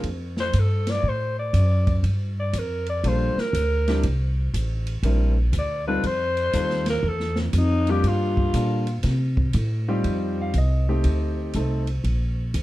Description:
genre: jazz, small-group swing and bop.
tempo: 120 BPM.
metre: 4/4.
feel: swing 66% on 8ths.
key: F mixolydian.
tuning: A4 = 440 Hz.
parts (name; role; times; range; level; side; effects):
warm concert grand piano; accompaniment; 0.0-11.9 s; G3 to F5; -27 LUFS; left 1 dB; none.
upright bass; bass; 0.0-12.6 s; A1 to C3; -22 LUFS; equal; none.
open jazz drum kit; drums; 0.0-12.6 s; hi-hat, kick drum, ride cymbal, snare drum; -31 LUFS; right 1 dB; none.
growling alto saxophone; melody; 0.4-9.1 s; C4 to D5; -26 LUFS; left 1 dB; plate reverb.
room: little or no reverb.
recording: dark, warm production.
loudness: -20 LUFS.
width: side -16 dB against mid.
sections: 0.0-10.0 A section; 10.0-12.6 A section.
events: alto saxophone solo 0.0-10.0.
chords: 0.0 Fadd9; 2.0 Gm7; 4.0 C9; 6.0 F9; 8.0 Gm7; 9.0 C5; 10.0 F9; 12.0 Bb.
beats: | 0.04 0.54 1.04 1.54 | 2.04 2.54 3.04 3.54 | 4.04 4.54 5.04 5.54 | 6.04 6.54 7.04 7.54 | 8.04 8.54 9.04 9.54 | 10.04 10.54 11.04 11.54 | 12.05 12.55.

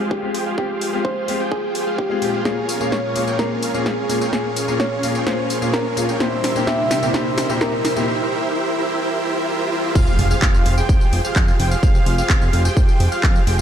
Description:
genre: EDM, festival progressive house.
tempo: 128 BPM.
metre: 4/4.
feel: straight.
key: F harmonic minor.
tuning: A4 = 440 Hz.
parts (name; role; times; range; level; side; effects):
soft struck synth lead; melody; 0.0-8.0 s; G4 to E5; -24 LUFS; left 1 dB; chorus, cassette tape, digital delay.
lush unison pad; sustained chords; 0.0-8.1 s; Bb2 to F4; -30 LUFS; right 1 dB; chorus, sidechain pumping.
dense compressed supersaw; riff; 0.0-13.6 s; E4 to G5; -24 LUFS; right 2 dB; sidechain pumping, low-pass filter, digital delay.
riser and impact; sound effects; 0.4-11.8 s; none; -28 LUFS; right 1 dB; none.
electronic kick drum; drums; 0.1-13.3 s; none; -18 LUFS; equal; high-pass filter on kick, small room ambience, high-pass filter on room.
clear concert grand piano; accompaniment; 0.2-8.1 s; Bb2 to Ab4; -25 LUFS; left 3 dB; sidechain pumping.
house drum kit; drums; 0.3-13.6 s; crash cymbal, handclaps, hi-hat, snare drum, tambourine; -25 LUFS; equal; small room ambience.
wide unison lead; arpeggios; 10.0-13.6 s; F5 to G5; -26 LUFS; right 1 dB; sidechain pumping, digital delay.
fat analog bass; bass; 10.0-13.6 s; F1 to F2; -20 LUFS; equal; sidechain pumping.
room: moderate lush hall reverb, RT60 1.9 s.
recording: dark, warm production.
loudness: -17 LUFS.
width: side -9 dB against mid.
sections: 0.0-10.0 A section; 10.0-13.6 B section.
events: build-up 0.0-10.0; filter sweep on analog synth pad 0.0-10.0; riser 0.4-10.0; drum fill 2.5-8.1; drop 10.0-13.6; impact 10.0-11.8.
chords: 0.0 Fmadd9; 2.5 Bbm7; 6.2 C; 10.0 Fmadd9.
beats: 0.11 | 0.58 1.05 1.52 1.99 | 2.45 2.92 3.39 3.86 | 4.33 4.80 5.27 5.74 | 6.20 6.67 7.14 7.61 | 8.08 8.55 9.02 9.48 | 9.95 10.42 10.89 11.36 | 11.83 12.30 12.77 13.23.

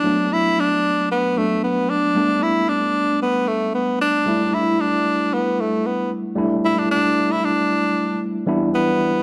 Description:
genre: pop.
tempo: 114 BPM.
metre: 4/4.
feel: straight.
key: unclear.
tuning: A4 = 440 Hz.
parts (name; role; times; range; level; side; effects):
clear tenor saxophone; melody; 0.0-9.2 s; A3 to E4; -21 LUFS; equal; none.
tine electric piano; accompaniment; 0.0-9.2 s; E3 to E4; -24 LUFS; equal; overdrive.
room: light reverb, small room ambience.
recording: dry, close 1970s-style studio recording.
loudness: -20 LUFS.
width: mono.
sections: 0.1-8.5 A section.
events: none.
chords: 0.1 Bm7; 2.2 Gadd9; 4.3 A7sus4; 8.5 Em7.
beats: | 0.05 0.58 1.11 1.63 | 2.16 2.69 3.21 3.74 | 4.26 4.79 5.32 5.84 | 6.37 6.90 7.42 7.95 | 8.47 9.00.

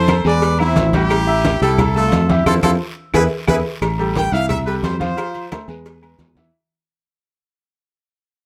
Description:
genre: latin, salsa.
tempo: 177 BPM.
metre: 4/4.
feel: straight.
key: unclear.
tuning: A4 = 440 Hz.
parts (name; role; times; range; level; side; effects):
brilliant horn section; melody; 0.0-3.6 s; C4 to D5; -22 LUFS; equal; none.
bright upright piano; accompaniment; 0.0-6.5 s; E3 to E6; -23 LUFS; equal; none.
fingered electric bass; bass; 0.0-6.5 s; A1 to F2; -21 LUFS; equal; none.
claves; percussion; 0.1-6.2 s; none; -34 LUFS; equal; none.
congas; percussion; 0.1-6.5 s; none; -24 LUFS; equal; none.
cowbell; percussion; 0.1-6.5 s; none; -29 LUFS; equal; none.
guiro; percussion; 0.1-6.5 s; none; -39 LUFS; equal; none.
maracas; percussion; 0.1-6.5 s; none; -45 LUFS; equal; none.
timbales and agogo bells; percussion; 0.1-6.5 s; none; -29 LUFS; equal; none.
bright trumpet section; melody; 4.2-5.6 s; B4 to G5; -27 LUFS; equal; none.
room: moderate studio reverb, RT60 0.6 s.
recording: none.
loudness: -17 LUFS.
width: mono.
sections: 0.0-3.8 A section; 3.8-6.5 B section.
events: band accent 2.5-3.8; drum fill 3.0-3.8; fade-out 3.8-6.5.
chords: 0.4 E; 1.1 Am7; 1.8 C6; 2.5 Fmaj7; 3.1 E; 3.8 Am7; 4.5 C6; 5.2 Fmaj7; 5.9 E.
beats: 0.09 0.43 0.77 | 1.11 1.45 1.79 2.13 | 2.47 2.81 3.15 3.48 | 3.82 4.16 4.50 4.84 | 5.18 5.52 5.85 6.19.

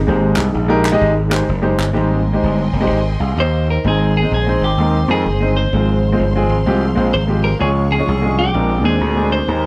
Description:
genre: uptempo gospel.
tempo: 128 BPM.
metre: 4/4.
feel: swing 64% on 8ths.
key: Ab major.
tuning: A4 = 442 Hz.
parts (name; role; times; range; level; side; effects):
mellow tonewheel organ; sustained chords; 0.0-9.7 s; Eb3 to C5; -26 LUFS; equal; none.
gritty slap bass; bass; 0.0-9.7 s; F1 to F2; -20 LUFS; equal; overdrive.
warm upright piano; accompaniment; 0.1-9.7 s; Ab2 to F5; -21 LUFS; equal; none.
group handclap; percussion; 0.4-1.9 s; none; -27 LUFS; equal; none.
warm studio string section; sustained chords; 2.0-9.7 s; Bb4 to Db6; -34 LUFS; equal; none.
clean electric guitar; melody; 3.4-9.7 s; G4 to C5; -23 LUFS; equal; none.
room: light reverb.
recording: none.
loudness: -16 LUFS.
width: mono.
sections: 0.0-2.0 A section; 2.0-3.8 B section; 3.8-9.7 C section.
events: none.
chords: 0.1 Abmaj7; 3.8 Ab; 5.7 Fm; 7.6 Db; 8.5 Bb9.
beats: | 0.08 0.55 1.02 1.49 | 1.96 2.43 2.90 3.37 | 3.84 4.31 4.78 5.25 | 5.72 6.19 6.66 7.13 | 7.60 8.07 8.54 9.01 | 9.48.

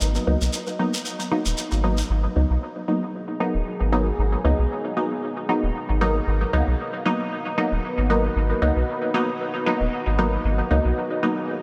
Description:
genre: dub techno.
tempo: 115 BPM.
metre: 4/4.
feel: swing 54% on 16ths.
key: G# minor.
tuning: A4 = 439 Hz.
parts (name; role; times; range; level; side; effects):
soft dub sub bass; bass; 0.0-10.9 s; D#1 to C#2; -24 LUFS; equal; none.
shekere; percussion; 0.0-2.1 s; none; -33 LUFS; equal; none.
filtered dub chord stab; stabs; 0.3-11.4 s; F#3 to D#4; -26 LUFS; equal; chorus, phaser, vintage 12-bit sampler grit, dub echo.
deep dark ambient pad; sustained chords; 3.1-11.6 s; B3 to B4; -33 LUFS; equal; chorus, built-in reverb.
room: moderate huge ambient reverb, RT60 4.2 s.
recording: dreamy mix soaked in reverb.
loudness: -23 LUFS.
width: mono.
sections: 0.0-2.1 A section; 2.1-11.6 A section.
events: none.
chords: 0.0 G#m7.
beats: | 0.01 0.53 1.05 1.58 | 2.10 2.62 3.14 3.66 | 4.18 4.71 5.23 5.75 | 6.27 6.79 7.32 7.84 | 8.36 8.88 9.40 9.93 | 10.45 10.97 11.49.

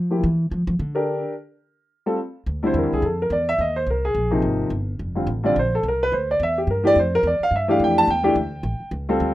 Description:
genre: jazz.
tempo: 214 BPM.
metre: 4/4.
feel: swing 59% on 8ths.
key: D minor.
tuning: A4 = 442 Hz.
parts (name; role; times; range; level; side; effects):
upright bass; bass; 0.0-9.3 s; F1 to F3; -25 LUFS; equal; none.
warm grand piano; melody; 0.1-9.3 s; B#2 to A5; -19 LUFS; equal; none.
room: light reverb.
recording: rough home demo mix.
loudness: -19 LUFS.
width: side -15 dB against mid.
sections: 0.0-2.5 A section; 2.5-9.3 A section.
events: upright bass solo 0.0-2.5; grand piano solo 2.5-9.3.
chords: 0.2 Dmadd9; 2.5 Dm11; 3.6 G#69; 4.7 Gm9; 5.8 Cadd9; 7.0 Fmaj9; 8.1 Dsus24; 8.6 A7.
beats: | 0.22 0.50 0.78 1.06 | 1.34 1.62 1.91 2.19 | 2.47 2.75 3.03 3.31 | 3.59 3.87 4.15 4.43 | 4.71 4.99 5.27 5.55 | 5.83 6.11 6.39 6.67 | 6.95 7.23 7.51 7.79 | 8.08 8.36 8.64 8.92 | 9.20.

